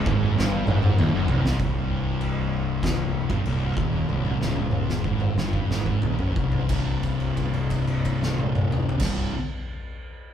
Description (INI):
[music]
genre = stoner and doom metal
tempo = 88-98 BPM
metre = 4/4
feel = straight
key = C minor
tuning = A4 = 440 Hz
[part]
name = sludgy distorted guitar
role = riff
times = 0.0-1.6 s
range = C2 to Ab2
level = -29 LUFS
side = equal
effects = overdrive
[part]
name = thick fuzz guitar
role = riff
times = 0.0-9.3 s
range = C2 to C3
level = -28 LUFS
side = left 7 dB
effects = distortion
[part]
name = thick fuzz guitar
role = riff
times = 0.0-9.3 s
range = C2 to C3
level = -28 LUFS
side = right 5 dB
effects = distortion
[part]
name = fuzz fingered electric bass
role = bass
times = 0.0-9.3 s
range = C1 to Ab1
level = -30 LUFS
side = equal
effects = overdrive
[part]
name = oversized low-tuned drum kit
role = drums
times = 0.1-9.2 s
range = crash cymbal, kick drum, snare drum, toms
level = -26 LUFS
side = equal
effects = none
[sound]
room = wet large studio reverb, RT60 1.4 s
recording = band playing live in one room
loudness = -22 LUFS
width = side -9 dB against mid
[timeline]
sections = 0.0-1.6 A section; 1.6-6.7 B section; 6.7-9.4 C section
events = drum fill 0.4-1.6, 4.1-6.7; slowing down 1.6-6.7; held note 6.7-9.0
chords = 0.0 Cm; 6.7 C5